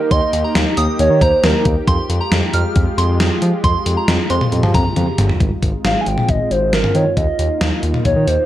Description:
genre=synth-pop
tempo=136 BPM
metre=4/4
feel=straight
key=Ab major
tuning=A4 = 440 Hz
part: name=hollow clarinet-like synth lead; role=melody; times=0.0-1.8, 5.8-8.5 s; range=Bb4 to Ab5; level=-18 LUFS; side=right 1 dB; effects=chorus, analog delay
part: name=lush unison pad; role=sustained chords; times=0.0-8.5 s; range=Ab3 to G4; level=-23 LUFS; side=equal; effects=chorus
part: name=soft synth bell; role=second line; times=0.1-5.1 s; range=Bb5 to F6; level=-23 LUFS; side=right 2 dB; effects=chorus, phaser, analog delay
part: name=smooth synth bass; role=bass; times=0.1-8.4 s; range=G1 to F3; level=-19 LUFS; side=equal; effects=none
part: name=gated 80s digital drum machine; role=drums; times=0.1-8.4 s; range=cowbell, hi-hat, kick drum, snare drum, toms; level=-18 LUFS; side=equal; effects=gated reverb, gated reverb snare
room=light reverb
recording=dark, warm production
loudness=-13 LUFS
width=side -13 dB against mid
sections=0.0-5.4 A section; 5.4-8.5 B section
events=drum fill 5.0-5.4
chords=0.0 Eb; 1.9 Fmadd9; 5.4 Ab6; 6.9 Ebsus2

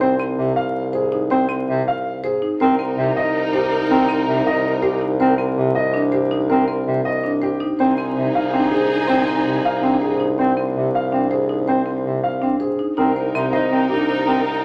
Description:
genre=classical, minimalist pattern music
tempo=324 BPM (eighths)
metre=7/8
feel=straight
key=C minor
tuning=A4 = 439 Hz
part: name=dark grand piano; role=melody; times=0.0-14.5 s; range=G4 to F5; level=-26 LUFS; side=equal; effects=none
part: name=warm bass clarinet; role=accompaniment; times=0.0-14.4 s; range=C3 to C4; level=-23 LUFS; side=equal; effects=none
part: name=marimba with medium mallets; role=arpeggios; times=0.0-14.6 s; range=C4 to C5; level=-27 LUFS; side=equal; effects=none
part: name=mellow bassoon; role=bass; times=0.0-14.6 s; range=C2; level=-26 LUFS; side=equal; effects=none
part: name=bright clarinet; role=second line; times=2.6-5.0, 7.8-10.2, 13.0-14.6 s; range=Eb4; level=-31 LUFS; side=equal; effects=none
part: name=dark studio violin section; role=sustained chords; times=2.6-5.0, 7.8-10.2, 13.0-14.6 s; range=Eb4 to Bb4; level=-26 LUFS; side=equal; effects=none
room=moderate large studio reverb, RT60 1.1 s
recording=vinyl crackle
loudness=-19 LUFS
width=mono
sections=0.0-13.0 A section; 13.0-14.6 A section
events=none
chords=0.0 F7(no3)/C (rootless); 2.6 Cm7; 7.8 Fm7/C (rootless); 13.0 Cm7

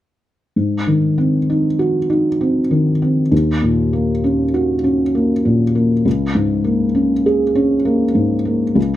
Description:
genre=classical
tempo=66 BPM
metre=3/4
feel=rubato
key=unclear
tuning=A4 = 436 Hz
part: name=felt-muted upright piano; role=accompaniment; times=0.6-9.0 s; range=Db2 to Ab4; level=-14 LUFS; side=equal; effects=none
room=moderate studio reverb, RT60 0.7 s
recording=none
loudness=-14 LUFS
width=side -13 dB against mid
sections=0.6-9.0 A section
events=none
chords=0.6 Ab7; 3.3 Ebm7; 6.1 Bbm7/Db

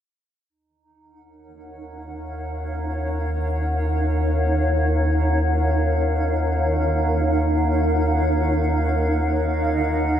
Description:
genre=ambient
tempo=free time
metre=none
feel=none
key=Eb minor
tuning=A4 = 436 Hz
part: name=granular cloud pad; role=sustained chords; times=1.7-10.2 s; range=Eb4 to Gb5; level=-22 LUFS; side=equal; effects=built-in reverb
part: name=deep rumbling drone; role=bass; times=2.1-10.2 s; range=Eb2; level=-22 LUFS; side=equal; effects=built-in reverb
room=wet cathedral reverb, RT60 5.2 s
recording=in a vast, echoing space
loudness=-19 LUFS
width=side -10 dB against mid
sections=0.5-10.2 A section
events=fade-in on ambient pad 0.5-10.2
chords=0.5 Ebm7

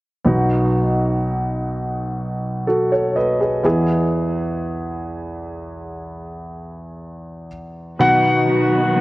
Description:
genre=pop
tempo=62 BPM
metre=4/4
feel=straight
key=unclear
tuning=A4 = 441 Hz
part: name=warm concert grand piano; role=accompaniment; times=0.2-9.0 s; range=B1 to D#5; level=-19 LUFS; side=equal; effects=none
part: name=bright grand piano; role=melody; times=8.0-9.0 s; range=F#5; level=-16 LUFS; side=left 1 dB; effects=none
part: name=warm chamber string section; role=sustained chords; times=8.0-9.0 s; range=D#3 to F#4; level=-23 LUFS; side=left 1 dB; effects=none
part: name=mellow electric guitar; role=arpeggios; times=8.0-9.0 s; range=B2 to B4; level=-23 LUFS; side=left 1 dB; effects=analog chorus
room=moderate lush hall reverb, RT60 2.6 s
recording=worn, warbling old tape, cassette tape, warbly pitch drift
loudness=-16 LUFS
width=side -18 dB against mid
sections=0.3-8.0 A section; 8.0-9.0 B section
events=none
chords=0.3 B; 3.6 E; 8.0 B

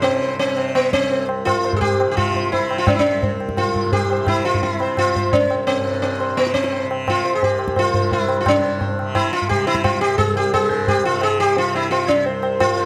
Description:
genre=indian classical, Hindustani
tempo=172 BPM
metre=4/4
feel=straight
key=C major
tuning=A4 = 440 Hz
part: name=sitar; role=melody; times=0.0-12.9 s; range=B3 to C5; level=-21 LUFS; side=equal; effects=none
part: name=tanpura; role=drone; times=0.0-12.9 s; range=C2 to C3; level=-28 LUFS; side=equal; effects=none
part: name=tabla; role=percussion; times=0.0-12.7 s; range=none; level=-25 LUFS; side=equal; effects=none
room=light reverb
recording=close, detailed microphones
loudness=-19 LUFS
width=mono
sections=0.0-8.5 A section; 8.5-12.9 B section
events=speeding up 0.0-12.9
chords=none

